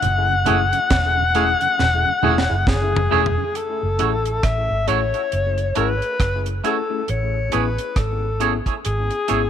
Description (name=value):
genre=lovers rock reggae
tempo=68 BPM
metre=4/4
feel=swing 59% on 16ths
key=F# minor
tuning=A4 = 440 Hz
part: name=warm alto saxophone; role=melody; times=0.0-9.5 s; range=G#4 to F#5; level=-21 LUFS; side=left 4 dB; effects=tape echo
part: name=vintage muted fingered electric bass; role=bass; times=0.0-9.5 s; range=E1 to A1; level=-22 LUFS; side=right 1 dB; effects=tube saturation
part: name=deep reggae drum kit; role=drums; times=0.0-9.5 s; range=hi-hat, kick drum, rim click, snare drum, toms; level=-23 LUFS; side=right 1 dB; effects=none
part: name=congas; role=percussion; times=0.0-2.9 s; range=none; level=-29 LUFS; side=right 8 dB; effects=none
part: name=tonewheel organ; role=accompaniment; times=0.3-3.4 s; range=F#2 to G#4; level=-31 LUFS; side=right 9 dB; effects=stopped rotary speaker, tape echo
part: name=mellow tine electric piano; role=accompaniment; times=0.5-9.4 s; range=A3 to G#4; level=-28 LUFS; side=left 10 dB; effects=medium stereo tremolo, tape echo
part: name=twangy electric guitar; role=stabs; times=0.5-9.4 s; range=A3 to C#5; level=-24 LUFS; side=right 12 dB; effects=tremolo
room=light reverb, small room ambience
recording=1960s-style stereo with parts hard left and right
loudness=-17 LUFS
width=side -9 dB against mid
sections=0.0-3.6 A section; 3.6-9.5 B section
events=drum fill 1.8-3.6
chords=0.0 F#m9; 3.6 F#m7; 7.1 Amaj7